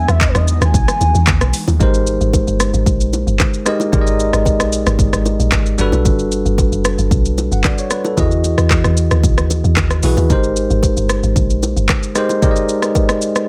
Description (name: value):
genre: amapiano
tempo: 113 BPM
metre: 4/4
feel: straight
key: unclear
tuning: A4 = 439 Hz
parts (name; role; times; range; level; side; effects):
- warm velvety synth lead; melody; 0.0-1.5 s; B4 to G#5; -23 LUFS; equal; chorus, tape echo
- ethereal airy pad; sustained chords; 0.0-1.8 s; E3 to F#4; -30 LUFS; equal; ensemble chorus, built-in reverb, sidechain pumping
- deep log drum bass; bass; 0.0-11.9 s; F#1 to E2; -18 LUFS; equal; none
- afro-pop drum kit; drums; 0.1-13.5 s; handclaps, hi-hat, kick drum, rim click, shaker; -19 LUFS; equal; none
- bongos and congas; percussion; 0.2-13.1 s; none; -26 LUFS; equal; none
- bell-like tine electric piano; accompaniment; 1.8-13.5 s; E3 to F#5; -20 LUFS; equal; none
room: little or no reverb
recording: none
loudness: -15 LUFS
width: mono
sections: 0.0-1.8 A section; 1.8-13.5 B section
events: drop 0.0-1.8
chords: 0.0 Emaj9; 1.8 Abmaj9; 5.8 Gmaj9; 8.2 Emaj9; 10.3 Abmaj9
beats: 0.21 0.74 1.27 | 1.80 2.33 2.87 3.40 | 3.93 4.46 4.99 5.52 | 6.05 6.58 7.11 7.64 | 8.18 8.71 9.24 9.77 | 10.30 10.83 11.36 11.89 | 12.42 12.95 13.48